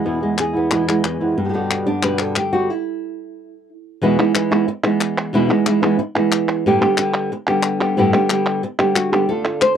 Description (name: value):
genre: flamenco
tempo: 182 BPM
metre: 4/4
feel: straight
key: unclear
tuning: A4 = 438 Hz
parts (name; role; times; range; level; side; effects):
- flamenco guitar; melody; 0.0-9.8 s; E2 to C5; -17 LUFS; right 1 dB; none
- flamenco guitar; stabs; 0.0-2.7, 9.3-9.7 s; E2 to G4; -22 LUFS; right 2 dB; slapback echo
- palmas hand claps; percussion; 0.4-9.8 s; none; -21 LUFS; left 1 dB; none
room: moderate booth ambience, RT60 0.3 s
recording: dry, close 1970s-style studio recording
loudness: -16 LUFS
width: side -8 dB against mid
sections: 0.0-4.0 A section; 4.0-9.3 B section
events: stop 2.7-4.0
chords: 0.0 E; 1.4 G; 2.7 N.C.; 4.0 E; 6.7 G